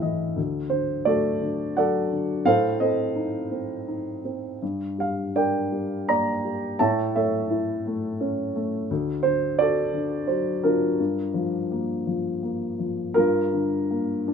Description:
classical, lyrical solo piano; 84 BPM; 3/4; uneven beats, rubato; G minor; A4 = 441 Hz
dark grand piano; solo; 0.0-14.3 s; D2 to Bb5; -22 LUFS; equal
light reverb; minimal, uncompressed stereo recording; -22 LUFS; side -6 dB against mid
0.0-13.2 A section; 13.2-14.3 B section
grand piano fill 0.0-0.4
0.4 D; 2.5 Adim; 4.6 Gm; 6.8 A; 8.9 D; 11.0 Gm7

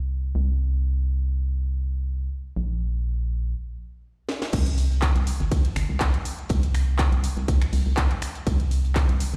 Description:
piano house; 122 BPM; 4/4; swing 54% on 16ths; A4 = 440 Hz
organ-like FM bass; bass; 0.0-9.4 s; G1 to C2; -26 LUFS; equal; tube saturation, sidechain pumping
house drum kit; drums; 4.3-9.4 s; crash cymbal, finger snaps, handclaps, hi-hat, ride cymbal, snare drum; -34 LUFS; equal; overdrive
cloth-damped thuddy drum kit; drums; 4.5-9.4 s; hi-hat, snare drum; -47 LUFS; equal
electronic kick drum; drums; 4.5-9.1 s; -25 LUFS; equal; overdrive
little or no reverb; played on a big sound system in a bare room, large studio reverb; -25 LUFS; mono
0.0-4.5 A section; 4.5-9.4 B section
stop 3.5-4.5; drum fill 4.3; drop 4.5-9.4

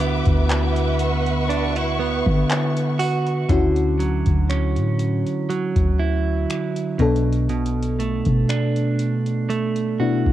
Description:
contemporary R&B; 60 BPM; 4/4; swing 54% on 16ths; D major; A4 = 439 Hz
mellow FM electric piano; accompaniment; 0.0-10.3 s; B2 to A4; -26 LUFS; left 4 dB; chorus
warm studio string section; sustained chords; 0.0-3.5 s; B4 to D6; -26 LUFS; equal; sidechain pumping
direct-recorded clean electric guitar; arpeggios; 0.0-10.3 s; B2 to F#4; -24 LUFS; right 6 dB
soft 808-style bass; bass; 0.0-10.3 s; B1 to D3; -22 LUFS; equal
booming analog drum machine; drums; 0.0-10.3 s; finger snaps, handclaps, hi-hat, kick drum; -26 LUFS; equal; overdrive, cassette tape
little or no reverb; home recording on cassette; -18 LUFS; side -13 dB against mid
0.0-3.5 A section; 3.5-10.3 B section
FM electric piano fill 10.0-10.3
0.0 D69; 3.5 Dmaj9; 7.0 Bm7

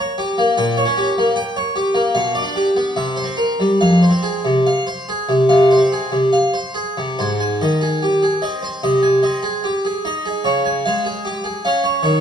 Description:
classical, baroque-style suite movement for harpsichord; 69-78 BPM; 4/4; rubato; F minor, Ab major from 7.2 s; A4 = 439 Hz
harpsichord; solo; 0.0-12.2 s; F2 to Ab5; -15 LUFS; equal
wet recital hall reverb, RT60 1.6 s; dark, warm production; -15 LUFS; side -8 dB against mid
0.0-7.2 A section; 7.2-12.2 A section
0.0 Eb7 (rootless); 2.1 G7/B; 2.9 C7; 3.8 Fm; 7.2 Ab; 8.9 Ab/C; 10.5 Db

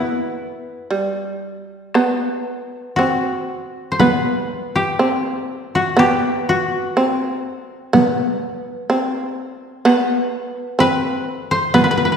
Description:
japanese traditional, Japanese chamber music; 57-64 BPM; 4/4; rubato; A4 = 440 Hz
koto; melody; 0.0-12.2 s; E4 to C5; -20 LUFS; left 2 dB
shamisen; second line; 0.0-12.2 s; G3 to C4; -18 LUFS; right 1 dB
taiko ensemble; percussion; 1.9-12.0 s; -24 LUFS; left 2 dB
wet scoring stage reverb, RT60 2.0 s; heard from further back in the room; -17 LUFS; side -7 dB against mid
0.0-1.9 A section; 1.9-12.2 B section

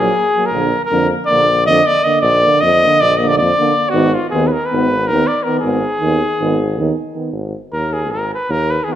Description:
balkan folk, Balkan brass band; 318 BPM (eighths); 9/8; straight; Ab dorian sharp4; A4 = 443 Hz
warm cornet; melody; 0.0-9.0 s; F4 to Eb5; -14 LUFS; equal
mellow French horn; accompaniment; 0.0-9.0 s; Bb3 to Cb4; -23 LUFS; left 4 dB
mellow euphonium; accompaniment; 0.0-9.0 s; D3 to Gb3; -21 LUFS; right 6 dB
warm tuba; bass; 0.0-8.8 s; Ab1 to F2; -20 LUFS; equal
wet recital hall reverb, RT60 1.5 s; -13 LUFS; side -11 dB against mid
0.0-7.3 A section; 7.3-9.0 B section
cornet solo 7.3-9.0
0.0 Ebm (rootless); 0.5 Bb; 3.9 Abm

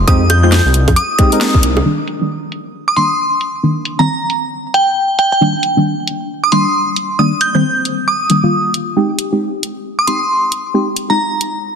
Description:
UK garage, two-step garage; 135 BPM; 4/4; swing 61% on 16ths; C minor; A4 = 440 Hz
dark detuned saw bass; bass; 0.0-1.8 s; C2 to F2; -12 LUFS; equal; sidechain pumping
glassy synth bell; melody; 0.1-11.2 s; G5 to G6; -15 LUFS; right 1 dB; chorus, vintage 12-bit sampler grit, ping-pong delay
deep mellow chord stab; stabs; 0.1-11.2 s; Eb3 to Bb4; -17 LUFS; equal; chorus, ping-pong delay
electronic kick drum; drums; 0.1-1.6 s; -12 LUFS; equal
garage drum kit; drums; 0.1-11.5 s; bongos, finger snaps, hi-hat, snare drum; -18 LUFS; right 1 dB; low-pass filter on hats, low-pass filter on snare, low-pass filter on perc
moderate lush hall reverb, RT60 2.0 s; dense, heavily limited modern master; -12 LUFS; side -6 dB against mid
0.0-1.9 A section; 1.9-11.8 B section
band accent 1.4
0.0 Fm7; 1.9 Cm7 (rootless); 9.0 Fm7 (rootless)

